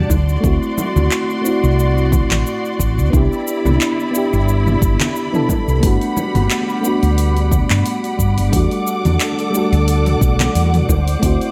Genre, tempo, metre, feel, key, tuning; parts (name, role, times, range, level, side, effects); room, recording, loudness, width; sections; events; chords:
sunset chillout; 89 BPM; 4/4; swing 55% on 16ths; G major; A4 = 441 Hz
mellow FM electric piano; accompaniment; 0.0-11.5 s; G3 to A4; -22 LUFS; equal; chorus, analog delay
rich studio string section; sustained chords; 0.0-11.5 s; G3 to D6; -26 LUFS; equal
woody fretless electric bass; bass; 0.1-11.4 s; G1 to G2; -18 LUFS; equal
deep house drum kit; drums; 0.1-11.5 s; handclaps, hi-hat, shaker, toms; -26 LUFS; equal; studio reverb
electronic kick drum; drums; 0.1-11.4 s; -20 LUFS; equal; studio reverb
congas; percussion; 0.1-11.0 s; -27 LUFS; equal; tape echo
wind-like tuned noise texture; texture; 6.1-11.5 s; D5 to D6; -32 LUFS; equal; built-in reverb
light reverb, digital ambience; echo-heavy mix; -16 LUFS; mono
0.0-11.5 A section
0.1 D7; 3.1 Cmaj9; 5.8 Gmaj7; 8.5 Em11; 10.9 D7